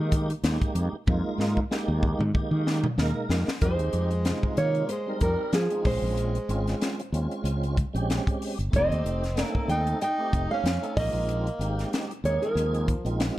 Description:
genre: electric jazz fusion.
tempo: 94 BPM.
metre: 4/4.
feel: swing 55% on 16ths.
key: F minor.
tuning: A4 = 440 Hz.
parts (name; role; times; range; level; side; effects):
tonewheel organ; accompaniment; 0.0-13.4 s; C3 to Bb4; -32 LUFS; right 2 dB; slow rotary speaker, overdrive, chorus vibrato.
fretless electric bass; bass; 0.0-13.3 s; F1 to F3; -27 LUFS; equal; none.
crisp fusion drum kit; drums; 0.1-13.4 s; hi-hat, kick drum, snare drum, toms; -28 LUFS; equal; none.
nylon-string guitar; melody; 3.6-13.3 s; Ab4 to G5; -29 LUFS; right 2 dB; slapback echo.
breathy tenor saxophone; second line; 3.6-13.3 s; F3 to Eb4; -35 LUFS; left 2 dB; none.
room: light reverb.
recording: dark, warm production.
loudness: -24 LUFS.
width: side -15 dB against mid.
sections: 0.0-3.6 A section; 3.6-13.4 B section.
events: drum fill 1.1-3.6.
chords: 0.0 Fm11; 3.6 Fm9; 5.9 Bbm9; 8.7 F9; 11.0 Bb7sus4.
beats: 0.44 | 1.08 1.71 2.35 2.99 | 3.62 4.26 4.90 5.54 | 6.17 6.81 7.45 8.09 | 8.73 9.37 10.01 10.64 | 11.28 11.92 12.56 13.20.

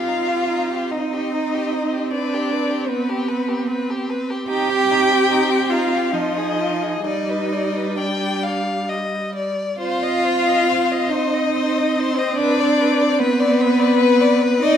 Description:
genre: classical, slow romantic movement for string quartet.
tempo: 64-79 BPM.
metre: 3/4.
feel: rubato.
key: C minor.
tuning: A4 = 439 Hz.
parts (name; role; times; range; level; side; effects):
rich violin; melody; 0.0-14.8 s; B4 to G5; -23 LUFS; left 9 dB; none.
rich violin; second line; 0.0-14.8 s; Eb4 to G5; -25 LUFS; left 3 dB; none.
rich viola; accompaniment; 0.0-14.8 s; F3 to C4; -24 LUFS; right 2 dB; none.
rich cello; bass; 0.0-14.8 s; B3 to G4; -20 LUFS; right 3 dB; none.
room: wet recital hall reverb, RT60 1.5 s.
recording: none.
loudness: -17 LUFS.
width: side -9 dB against mid.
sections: 0.0-14.8 A section.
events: none.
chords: 0.0 Cm; 2.1 G; 4.5 Cm; 6.1 Fm7; 7.0 G5; 9.8 Cm; 12.4 Bm.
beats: 0.49 1.33 | 2.12 2.89 3.68 | 4.49 5.29 6.14 | 7.05 7.97 8.88 | 9.80 10.68 11.53 | 12.37 13.19 13.99.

